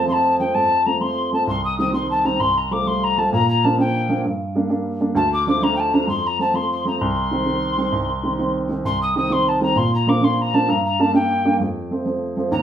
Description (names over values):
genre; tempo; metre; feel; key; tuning
celtic folk; 130 BPM (dotted quarters); 12/8; straight; C dorian; A4 = 440 Hz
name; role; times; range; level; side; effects
mellow hollow wooden whistle; melody; 0.0-12.6 s; G5 to Eb6; -20 LUFS; left 2 dB; plate reverb
warm upright piano; accompaniment; 0.0-12.6 s; C2 to D4; -20 LUFS; right 2 dB; none
room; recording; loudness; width
wet small room reverb, RT60 0.5 s; heard from further back in the room; -17 LUFS; side -9 dB against mid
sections
0.0-8.8 A section; 8.8-12.6 A section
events
none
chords
0.0 F; 1.5 Cm; 2.4 Fadd9/C; 3.3 Bb; 4.2 Gm; 5.2 Dm; 6.1 F; 7.0 Cm; 9.8 Bb; 10.7 Gm; 11.6 F